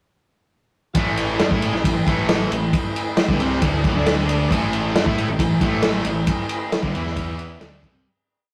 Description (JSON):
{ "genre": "classic rock", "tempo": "135 BPM", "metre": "4/4", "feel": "straight", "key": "A minor", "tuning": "A4 = 440 Hz", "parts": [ { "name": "bright tonewheel organ", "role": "sustained chords", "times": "0.9-8.0 s", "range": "A3 to E5", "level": "-32 LUFS", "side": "equal", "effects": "overdrive, chorus vibrato, fast rotary speaker" }, { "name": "crunchy overdriven guitar", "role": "riff", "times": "0.9-8.0 s", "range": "G2 to A4", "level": "-27 LUFS", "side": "equal", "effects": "none" }, { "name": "vintage drum kit", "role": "drums", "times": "0.9-7.9 s", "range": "kick drum, ride cymbal, snare drum", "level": "-23 LUFS", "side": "equal", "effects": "none" }, { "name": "tight distorted guitar", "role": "riff", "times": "1.0-8.1 s", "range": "G2 to A4", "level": "-29 LUFS", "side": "equal", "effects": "distortion" }, { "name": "fingered electric bass", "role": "bass", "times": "1.0-8.0 s", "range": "G1 to A2", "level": "-29 LUFS", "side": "equal", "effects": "none" } ], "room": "moderate studio reverb, RT60 0.7 s", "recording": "rough rehearsal-room recording, warm saturation", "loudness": "-20 LUFS", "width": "mono", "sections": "0.9-8.1 riff", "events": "fade-out 6.3-8.1", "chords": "0.9 Am; 4.0 D5; 4.5 Am; 6.9 E5; 7.6 Am" }